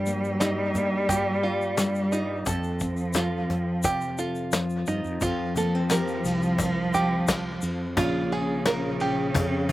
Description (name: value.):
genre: acoustic folk duo or small band.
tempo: 87 BPM.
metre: 4/4.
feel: straight.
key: unclear.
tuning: A4 = 440 Hz.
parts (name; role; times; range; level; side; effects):
warm cello; second line; 0.0-9.7 s; Db3 to G3; -28 LUFS; right 1 dB; none.
nylon-string guitar; accompaniment; 0.0-9.7 s; F2 to Bb4; -30 LUFS; left 3 dB; none.
open-back banjo; arpeggios; 0.0-9.7 s; Eb4 to Bb4; -30 LUFS; right 3 dB; none.
mellow fretless electric bass; bass; 0.0-9.7 s; Bb1 to G2; -31 LUFS; equal; none.
soft brush drum kit; drums; 0.1-9.7 s; hi-hat, kick drum, ride cymbal, snare drum; -33 LUFS; equal; none.
cajon; percussion; 0.1-9.7 s; none; -30 LUFS; left 3 dB; none.
tube shaker; percussion; 0.1-7.8 s; none; -37 LUFS; left 5 dB; none.
room: little or no reverb.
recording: recorded outdoors, with no room sound.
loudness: -23 LUFS.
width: side -16 dB against mid.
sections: 0.0-5.2 A section; 5.2-8.0 B section; 8.0-9.7 C section.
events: none.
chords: 0.0 Ebadd9/G; 2.5 Fadd9; 8.0 Bbm.